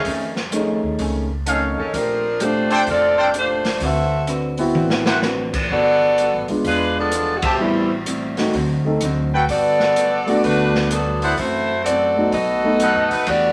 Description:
jazz, big band swing; 127 BPM; 4/4; swing 65% on 8ths; G major; A4 = 441 Hz
clear saxophone section; melody; 0.0-13.5 s; Eb3 to E5; -21 LUFS; equal
archtop guitar, miked and amplified; accompaniment; 0.0-13.5 s; F2 to B4; -30 LUFS; equal
swinging big-band drum kit; drums; 0.0-13.4 s; crash cymbal, hi-hat, kick drum, ride cymbal, snare drum, toms; -29 LUFS; equal
upright bass; bass; 0.1-13.5 s; E1 to B2; -29 LUFS; equal
warm grand piano; accompaniment; 0.5-12.8 s; G3 to A4; -24 LUFS; equal
clear trumpet section; stabs; 1.5-13.3 s; D4 to A5; -23 LUFS; equal
wet studio reverb, RT60 0.6 s; -19 LUFS; mono
0.0-13.3 A section
drum fill 4.8-5.2; band accent 7.4
0.0 F7alt; 1.9 Bbmaj13; 3.8 D13; 5.7 Gmaj9; 6.7 E7b9; 7.6 Am7; 8.5 D7b9; 9.5 Gmaj9; 11.4 F#m7b5; 12.3 B7

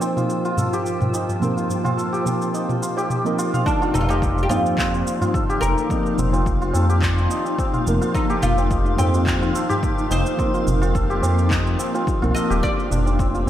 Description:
organic downtempo; 107 BPM; 4/4; swing 54% on 16ths; F mixolydian; A4 = 440 Hz
muted felt-like synth keys; accompaniment; 0.0-13.5 s; F3 to C5; -26 LUFS; right 2 dB; chorus, sidechain pumping, analog delay
granular cloud pad; sustained chords; 0.0-13.5 s; Bb3 to D6; -30 LUFS; left 2 dB; built-in reverb, ensemble chorus, sidechain pumping
santur; arpeggios; 0.0-13.5 s; C4 to F5; -25 LUFS; left 1 dB; analog delay
afro-pop drum kit; drums; 0.0-13.5 s; handclaps, shaker, toms; -28 LUFS; equal; studio reverb
tabla; percussion; 0.0-13.5 s; -30 LUFS; right 1 dB
quartz singing bowl; texture; 0.0-13.5 s; Bb3 to D5; -34 LUFS; left 4 dB
oud; melody; 3.7-13.5 s; D4 to Eb5; -27 LUFS; equal; analog delay
electronic kick drum; drums; 3.7-13.3 s; -25 LUFS; equal; overdrive, studio reverb
smooth synth bass; bass; 3.9-13.4 s; Eb1 to F2; -21 LUFS; equal; sidechain pumping
moderate plate reverb, RT60 2.2 s; dreamy mix soaked in reverb; -18 LUFS; side -11 dB against mid
0.0-3.7 A section; 3.7-13.5 B section
0.0 F7sus4; 12.6 Gm

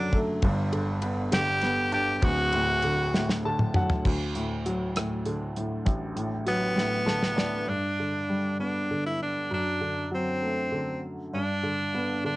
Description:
six-eight pop ballad; 66 BPM (dotted quarters); 6/8; straight; A4 = 440 Hz
raspy tenor saxophone; melody; 0.0-3.5, 6.5-12.4 s; B3 to G4; -27 LUFS; equal; cassette tape
clear baby grand piano; accompaniment; 0.0-12.4 s; D1 to A5; -28 LUFS; equal; cassette tape
damped 70s drum kit; drums; 0.1-7.5 s; crash cymbal, hi-hat, kick drum, ride cymbal, rim click, snare drum, toms; -28 LUFS; equal; cassette tape
moderate studio reverb, RT60 0.6 s; home recording on cassette, nothing above 10.3 kHz; -25 LUFS; side -19 dB against mid
0.0-4.1 A section; 4.1-7.7 B section; 7.7-12.4 C section
drum fill 3.1-4.1, 6.8-7.7; grand piano fill 3.1-4.1, 6.8-7.7
0.4 G; 2.2 D; 7.7 G; 9.5 D/F#; 11.3 G

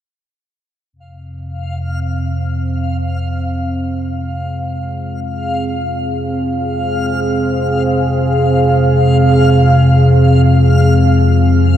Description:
dark ambient drone; free time; F minor; A4 = 440 Hz
deep dark ambient pad; sustained chords; 2.0-11.8 s; C4 to F5; -18 LUFS; right 2 dB; chorus, built-in reverb, shimmer reverb
deep rumbling drone; drone; 1.1-11.8 s; F2 to C3; -14 LUFS; left 1 dB; built-in reverb
backwards swelling texture; texture; 1.6-11.8 s; F5; -21 LUFS; equal; built-in reverb, shimmer reverb
wet huge ambient reverb, RT60 7.5 s; -12 LUFS; side -10 dB against mid
0.9-11.8 A section
fade-in on synth drone 0.9-11.8; fade-in on ambient pad 0.9-11.8; fade-in on synth texture 0.9-11.8
0.9 Fm

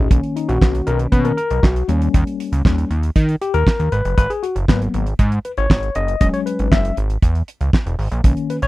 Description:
early-eighties boogie funk; 118 BPM; 4/4; straight; B major; A4 = 441 Hz
tine electric piano; accompaniment; 0.0-8.7 s; D#3 to E5; -21 LUFS; left 4 dB; medium stereo tremolo
fat analog bass; bass; 0.0-8.7 s; E1 to D#3; -18 LUFS; right 1 dB
damped 70s drum kit; drums; 0.1-8.7 s; handclaps, hi-hat, kick drum, snare drum; -15 LUFS; right 1 dB
little or no reverb; dry, close 1970s-style studio recording; -15 LUFS; side -18 dB against mid
0.1-8.7 A section
tine electric piano solo 0.1-8.7
0.1 Bmaj7; 1.9 D#7; 3.9 G#m9; 6.2 E6

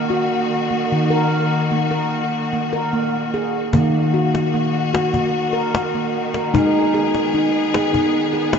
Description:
world meditative, meditative tuned percussion; 150 BPM (eighths); 7/8; straight; Eb minor; A4 = 436 Hz
bright studio string section; sustained chords; 0.0-8.6 s; Eb3 to Ab4; -23 LUFS; left 3 dB
handpan; arpeggios; 0.0-8.6 s; Eb3 to Bb4; -18 LUFS; equal; diffuse ambient delay
cajon; percussion; 3.7-8.6 s; -24 LUFS; left 3 dB
wet concert hall reverb, RT60 2.4 s; nothing above 7.7 kHz; -16 LUFS; side -6 dB against mid
0.0-3.7 A section; 3.7-8.6 B section
0.0 Ebm; 6.5 Abm

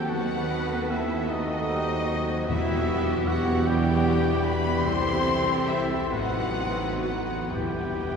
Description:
classical; 40-52 BPM (dotted quarters); 12/8; rubato; E minor; A4 = 440 Hz
warm symphonic violin section; melody; 0.0-8.2 s; D#5 to C6; -34 LUFS; left 3 dB
mellow oboe; second line; 0.0-8.2 s; D#5 to C6; -37 LUFS; right 1 dB
mellow small flute group; second line; 0.0-8.2 s; D#5 to C6; -36 LUFS; left 3 dB
rich symphonic violin section; second line; 0.0-8.2 s; D#4 to B4; -37 LUFS; left 3 dB
warm clarinet; second line; 0.0-8.2 s; F#4 to A4; -36 LUFS; left 6 dB
clear studio viola section; accompaniment; 0.0-8.2 s; E3 to C4; -34 LUFS; right 2 dB
warm French horn section; sustained chords; 0.0-8.2 s; B3 to A4; -34 LUFS; left 1 dB
concert harp; arpeggios; 0.0-8.2 s; G2 to G5; -37 LUFS; left 2 dB
clear trumpet section; stabs; 0.0-8.2 s; D#4 to C5; -32 LUFS; equal
dark symphonic cello section; bass; 0.0-8.2 s; E4 to B4; -35 LUFS; right 2 dB
rich symphonic double bass section; bass; 0.0-8.2 s; G1 to E2; -31 LUFS; right 2 dB
warm tuba; bass; 0.0-8.2 s; E1 to D#2; -34 LUFS; right 3 dB
warm bassoon; accompaniment; 0.1-8.2 s; A3 to D4; -36 LUFS; left 2 dB
timpani; percussion; 2.5-8.2 s; E2; -35 LUFS; left 1 dB
wet cathedral reverb, RT60 6.3 s; heard from further back in the room; -23 LUFS; side -6 dB against mid
0.0-8.2 A section
timpani fill 7.5-8.2
0.0 D#dim7; 2.5 Em; 4.8 C; 6.1 B7/A; 7.5 Em/G

